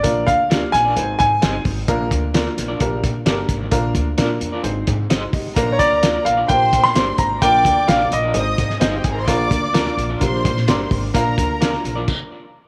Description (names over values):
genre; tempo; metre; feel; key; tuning
uptempo 1960s-style soul; 130 BPM; 4/4; straight; Bb mixolydian; A4 = 440 Hz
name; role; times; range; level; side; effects
clear baby grand piano; melody; 0.0-1.6, 5.7-9.0 s; Db5 to C6; -19 LUFS; equal; none
warm upright piano; accompaniment; 0.0-11.9 s; Bb3 to Eb5; -27 LUFS; equal; none
upright bass; bass; 0.0-12.0 s; G1 to Bb2; -26 LUFS; equal; none
cloth-damped thuddy drum kit; drums; 0.0-12.2 s; crash cymbal, hi-hat, kick drum, snare drum; -23 LUFS; equal; none
electric guitar through a small old amp; stabs; 0.5-12.1 s; D4 to Eb5; -32 LUFS; equal; tremolo, tape echo
warm studio violin section; second line; 5.6-11.8 s; Eb4 to Eb6; -27 LUFS; equal; none
room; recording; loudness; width
moderate echo chamber reverb, RT60 2.0 s, studio reverb; none; -18 LUFS; mono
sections
0.0-12.7 A section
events
stop 12.1-12.7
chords
0.0 Bb; 1.0 Ab; 1.9 Bb; 2.8 Gm/Bb; 3.7 Bb; 4.6 Ab; 5.6 Bb; 6.5 Gm/Bb; 7.4 Bb; 8.3 Ab; 9.3 Bb; 10.2 Gm/Bb; 11.1 Bb; 12.1 N.C.